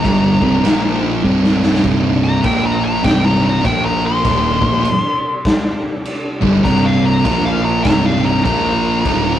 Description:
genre	stoner and doom metal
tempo	100 BPM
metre	4/4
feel	swing 62% on 8ths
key	C minor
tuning	A4 = 436 Hz
part	fuzz lead guitar	melody	0.0-9.4 s	F5 to C6	-19 LUFS	left 2 dB	wah, distortion
part	tonewheel organ	sustained chords	0.0-9.4 s	C3 to C5	-30 LUFS	equal	none
part	thick fuzz guitar	riff	0.0-9.4 s	C2 to Bb3	-19 LUFS	left 5 dB	distortion
part	thick fuzz guitar	riff	0.0-9.4 s	C2 to Bb3	-17 LUFS	right 4 dB	distortion
part	raw garage drum kit	drums	0.0-9.2 s	crash cymbal, kick drum, snare drum	-19 LUFS	equal	none
part	fuzz fingered electric bass	bass	0.1-9.4 s	C1 to Bb1	-23 LUFS	equal	overdrive
room	light reverb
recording	rough rehearsal-room recording, tube saturation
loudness	-12 LUFS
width	side -11 dB against mid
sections	0.0-9.4 A section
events	lead electric guitar solo 0.0-9.4; drum fill 1.2-1.8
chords	0.1 C5; 0.7 Bb5; 1.2 C5; 2.4 Bb5; 3.0 C5; 3.6 Bb5; 4.2 Cm; 7.3 Bb5; 7.9 C5; 8.5 Bb5

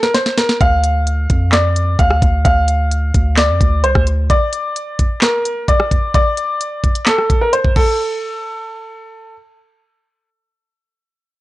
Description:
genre	hip hop, trap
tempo	130 BPM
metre	4/4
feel	half-time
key	D minor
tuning	A4 = 443 Hz
part	clear grand piano	melody	0.0-9.3 s	A4 to F5	-17 LUFS	equal	low-pass filter, analog delay
part	trap drum kit	drums	0.0-7.9 s	crash cymbal, handclaps, hi-hat, kick drum, rim click, snare drum	-15 LUFS	equal	none
part	long sustained 808-style bass	bass	0.6-4.3 s	C2 to F2	-15 LUFS	equal	none
room	little or no reverb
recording	dry, gritty hardware recording, cassette tape, nothing above 10.5 kHz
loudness	-13 LUFS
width	side -17 dB against mid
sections	0.0-8.0 A section; 8.0-11.4 B section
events	break 0.0-0.6; drum fill 0.0-0.6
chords	0.0 N.C.; 0.6 Dm; 4.3 N.C.

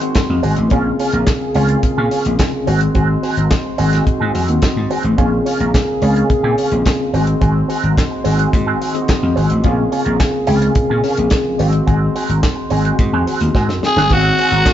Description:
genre	disco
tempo	107 BPM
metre	4/4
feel	straight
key	unclear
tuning	A4 = 441 Hz
part	electric guitar with an envelope filter	accompaniment	0.0-14.7 s	C4 to Bb4	-22 LUFS	right 4 dB	wah
part	tine electric piano	accompaniment	0.0-14.7 s	C3 to F5	-21 LUFS	left 2 dB	overdrive, fast stereo tremolo
part	mellow French horn section	sustained chords	0.0-14.7 s	Db3 to C5	-23 LUFS	right 1 dB	none
part	warm soul drum kit	drums	0.0-14.7 s	crash cymbal, handclaps, hi-hat, kick drum, snare drum	-18 LUFS	equal	none
part	vintage slap bass	bass	0.3-14.6 s	G1 to Bb2	-17 LUFS	equal	none
part	breathy tenor saxophone	melody	13.9-14.7 s	Gb4 to Ab4	-13 LUFS	equal	none
room	moderate stone room reverb, RT60 1.2 s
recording	band playing live in one room, nothing above 7.6 kHz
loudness	-13 LUFS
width	side -11 dB against mid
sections	0.0-14.1 A section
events	tine electric piano fill 4.1-5.2, 8.5-9.7; drum fill 13.6-14.1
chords	0.0 Ab7; 0.7 Bbm7; 2.7 Ab7; 5.2 Bbm7; 7.1 Ab7; 9.7 Bbm7; 11.6 Ab7

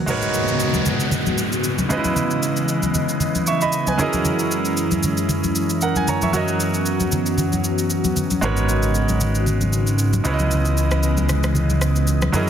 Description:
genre	amapiano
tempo	115 BPM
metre	4/4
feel	swing 55% on 16ths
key	G# minor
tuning	A4 = 443 Hz
part	bright concert grand piano	accompaniment	0.0-12.5 s	C#3 to C#6	-23 LUFS	right 3 dB	none
part	airy breathy pad	sustained chords	0.0-12.5 s	F#2 to D#5	-23 LUFS	left 1 dB	chorus
part	electronic shaker and rim click	drums	0.1-12.5 s	none	-28 LUFS	equal	overdrive
part	congas	percussion	0.1-12.5 s	none	-26 LUFS	left 1 dB	none
part	downlifter	sound effects	0.1-4.3 s	none	-27 LUFS	left 2 dB	none
part	fat analog bass	bass	8.4-12.5 s	G#1 to F#2	-19 LUFS	equal	none
room	light reverb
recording	dense, heavily limited modern master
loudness	-17 LUFS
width	side -9 dB against mid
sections	0.1-12.5 A section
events	none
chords	0.1 G#m11; 1.9 C#m9; 4.0 F#13; 6.3 Bmaj7/F#; 8.4 G#m11; 10.3 C#m9

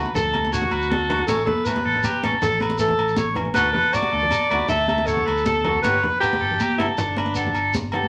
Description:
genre	highlife guitar band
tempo	105 BPM (dotted quarters)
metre	12/8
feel	straight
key	D major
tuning	A4 = 440 Hz
part	flamenco guitar	accompaniment	0.0-8.1 s	E3 to G4	-33 LUFS	equal	none
part	electric guitar at the edge of break-up	arpeggios	0.0-8.1 s	F#4 to C#5	-27 LUFS	equal	none
part	fingered electric bass	bass	0.0-8.1 s	G1 to D2	-32 LUFS	equal	none
part	breathy alto saxophone	melody	0.1-7.9 s	D4 to E5	-25 LUFS	equal	none
part	congas	percussion	0.1-8.1 s	none	-30 LUFS	equal	none
part	shekere	percussion	0.2-7.8 s	none	-34 LUFS	equal	none
part	agogo bells	percussion	0.3-8.1 s	none	-33 LUFS	equal	none
room	wet studio reverb, RT60 0.6 s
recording	none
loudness	-21 LUFS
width	mono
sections	0.0-8.1 A section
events	none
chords	0.0 D; 1.3 A; 3.6 D; 5.8 G

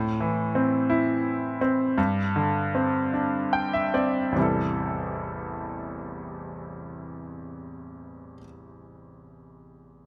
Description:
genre	pop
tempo	46-58 BPM (dotted quarters)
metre	6/8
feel	straight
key	A minor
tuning	A4 = 440 Hz
part	bright grand piano	accompaniment	0.0-10.1 s	A1 to G5	-28 LUFS	equal	none
room	light reverb, small room ambience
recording	none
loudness	-26 LUFS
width	mono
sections	0.0-4.4 A section; 4.4-9.5 B section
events	slowing down 0.0-4.4; grand piano fill 3.1-4.4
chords	0.0 Am; 2.0 Gsus4; 4.4 Am7

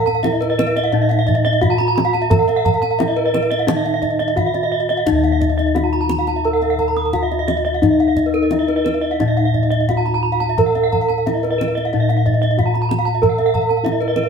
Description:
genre	Balinese gamelan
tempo	87 BPM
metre	4/4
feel	straight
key	Eb pelog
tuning	A4 = 439 Hz
part	gamelan-type bronze metallophone	melody	0.0-14.3 s	Eb4 to Bb4-45c	-22 LUFS	right 2 dB	none
part	gamelan-type bronze metallophone	arpeggios	0.0-14.3 s	Cb5-40c to Cb6-40c	-23 LUFS	left 3 dB	none
part	gamelan-type bossed gongs	bass	0.0-14.3 s	Eb2 to Bb4-45c	-19 LUFS	left 2 dB	none
part	gamelan-type bronze metallophone	arpeggios	0.1-14.2 s	Bb4-45c to Eb6	-22 LUFS	right 5 dB	none
part	kendang	percussion	0.1-14.3 s	none	-23 LUFS	equal	none
room	wet stone room reverb, RT60 1.2 s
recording	band playing live in one room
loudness	-15 LUFS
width	side -6 dB against mid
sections	0.0-14.3 A section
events	none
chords	none

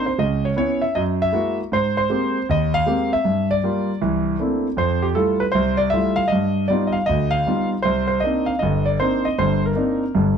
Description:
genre	solo jazz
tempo	157 BPM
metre	4/4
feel	swing 66% on 8ths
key	C minor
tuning	A4 = 439 Hz
part	warm concert grand piano	solo	0.0-10.4 s	G1 to F5	-18 LUFS	equal	none
room	moderate studio reverb, RT60 0.7 s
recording	dark, warm production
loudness	-18 LUFS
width	side -7 dB against mid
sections	0.0-10.4 A section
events	none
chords	0.2 Dbm7; 0.9 F#9; 1.7 Abmaj9; 3.2 Gm7; 4.0 C13; 4.8 Fmaj9; 6.3 G7b13; 7.8 Cm9

